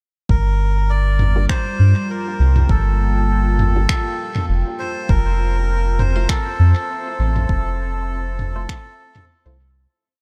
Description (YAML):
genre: ambient dub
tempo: 100 BPM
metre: 4/4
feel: swing 55% on 16ths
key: G dorian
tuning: A4 = 441 Hz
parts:
  - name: melodica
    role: melody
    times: 0.3-9.3 s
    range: A4 to D5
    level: -28 LUFS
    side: equal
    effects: dub echo
  - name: deep dark ambient pad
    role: sustained chords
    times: 1.1-9.9 s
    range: G3 to A5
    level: -32 LUFS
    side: equal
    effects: chorus, built-in reverb, vintage 12-bit sampler grit
  - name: soft dub sub bass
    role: bass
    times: 0.3-9.9 s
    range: F1 to G2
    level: -18 LUFS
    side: equal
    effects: tube saturation
  - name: electronic kick drum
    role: drums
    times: 0.3-8.8 s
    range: none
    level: -22 LUFS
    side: equal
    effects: none
  - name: organic electronic drum kit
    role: drums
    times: 1.2-9.3 s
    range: finger snaps, toms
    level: -27 LUFS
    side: equal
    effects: dub echo
  - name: filtered dub chord stab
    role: stabs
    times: 1.4-9.6 s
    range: A3 to C5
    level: -37 LUFS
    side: equal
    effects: phaser, subtle chorus, dub echo
  - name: wind-like tuned noise texture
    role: texture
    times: 5.6-9.9 s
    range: C4 to C5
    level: -40 LUFS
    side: equal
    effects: built-in reverb
room: little or no reverb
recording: none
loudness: -18 LUFS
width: mono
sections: 0.3-9.9 groove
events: fade-out 6.7-9.9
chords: 0.3 Gm7; 5.1 Fmaj7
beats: | 0.29 0.89 1.49 2.09 | 2.69 3.29 3.89 4.49 | 5.09 5.69 6.29 6.89 | 7.49 8.09 8.69 9.29